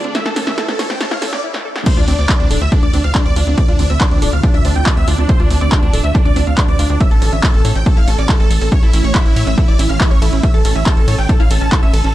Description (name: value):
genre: uplifting trance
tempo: 140 BPM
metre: 4/4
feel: straight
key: D minor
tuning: A4 = 437 Hz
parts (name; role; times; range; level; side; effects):
- big supersaw lead; melody; 0.0-12.1 s; D4 to A5; -21 LUFS; right 1 dB; phaser, sidechain pumping, digital delay
- shimmering ambient pad; sustained chords; 0.0-12.1 s; D3 to F4; -27 LUFS; right 2 dB; chorus, built-in reverb, phaser, sidechain pumping
- tight sequenced synth; arpeggios; 0.0-12.1 s; C4 to C#5; -26 LUFS; equal; chorus, sidechain pumping, digital delay
- tight sequencer bass; bass; 0.0-12.1 s; D1 to A2; -16 LUFS; equal; sidechain pumping, high-pass filter
- punchy analog drum machine; drums; 0.0-12.1 s; crash cymbal, handclaps, hi-hat, ride cymbal, snare drum; -22 LUFS; equal; none
- riser; sound effects; 0.0-1.4 s; none; -29 LUFS; right 1 dB; none
- electronic kick drum; drums; 1.9-11.8 s; none; -14 LUFS; equal; none
room: little or no reverb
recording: dark, warm production, high-pass filter, lossy compression artefacts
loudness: -11 LUFS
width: side -14 dB against mid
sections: 0.0-1.9 A section; 1.9-12.1 B section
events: build-up 0.0-1.9; drum fill 0.0-1.4, 1.5-1.9; riser 0.0-1.4; filter sweep on supersaw synth 0.0-1.9; filter sweep on synth arpeggio sound 0.0-1.9; break 1.4-1.9; drop 1.9-12.1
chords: 0.1 A; 1.9 Dm7; 7.0 A